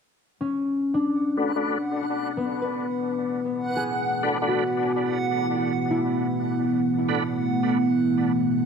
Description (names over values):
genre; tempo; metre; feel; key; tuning
ambient; free time; none; none; B dorian; A4 = 440 Hz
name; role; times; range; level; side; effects
deep dark ambient pad; sustained chords; 2.2-8.7 s; A3 to B4; -25 LUFS; right 2 dB; chorus, built-in reverb
backwards swelling texture; texture; 1.8-8.7 s; F#5; -32 LUFS; right 2 dB; built-in reverb
concert harp; arpeggios; 0.4-8.5 s; B3 to B4; -27 LUFS; left 2 dB; low-pass filter, dub echo
tonewheel organ; stabs; 1.4-7.2 s; A3 to B4; -30 LUFS; left 1 dB; chorus vibrato, slow rotary speaker, low-pass filter, dub echo
room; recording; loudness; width
wet spring reverb, RT60 1.9 s, digital ambience; echo-heavy mix; -22 LUFS; side -6 dB against mid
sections
0.3-8.7 A section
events
filter sweep on ambient pad 0.3-8.7; filter sweep on tonewheel organ 0.3-8.7; filter sweep on harp 0.3-8.7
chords
0.3 Bm7